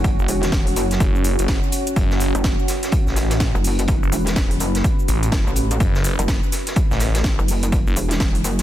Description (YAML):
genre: bass house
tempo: 125 BPM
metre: 4/4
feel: swing 61% on 16ths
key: F# minor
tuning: A4 = 441 Hz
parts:
  - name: deep dark ambient pad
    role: sustained chords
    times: 0.0-8.6 s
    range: C#4 to C#5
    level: -26 LUFS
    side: right 1 dB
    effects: chorus, built-in reverb, sidechain pumping
  - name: pulsing pluck wobble bass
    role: bass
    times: 0.0-8.6 s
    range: E1 to A1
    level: -21 LUFS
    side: equal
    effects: chorus, sidechain pumping
  - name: electronic kick drum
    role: drums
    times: 0.0-8.3 s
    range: none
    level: -20 LUFS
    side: equal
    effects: overdrive
  - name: house drum kit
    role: drums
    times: 0.0-8.6 s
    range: hi-hat, shaker, snare drum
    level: -27 LUFS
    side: equal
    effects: overdrive
  - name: vintage drum kit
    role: drums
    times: 0.0-8.6 s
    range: hi-hat, snare drum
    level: -32 LUFS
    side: equal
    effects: high-pass filter on hats, high-pass filter on snare, high-pass filter on room
  - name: phased detuned saw bass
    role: bass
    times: 0.2-7.9 s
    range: F#1 to A1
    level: -20 LUFS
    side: equal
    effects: phaser, tube saturation, sidechain pumping
room: little or no reverb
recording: dense, heavily limited modern master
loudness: -17 LUFS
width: side -13 dB against mid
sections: 0.0-8.6 A section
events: none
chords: 0.0 F#5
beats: | 0.04 0.52 1.00 1.48 | 1.96 2.44 2.92 3.40 | 3.88 4.36 4.84 5.32 | 5.80 6.28 6.76 7.24 | 7.72 8.20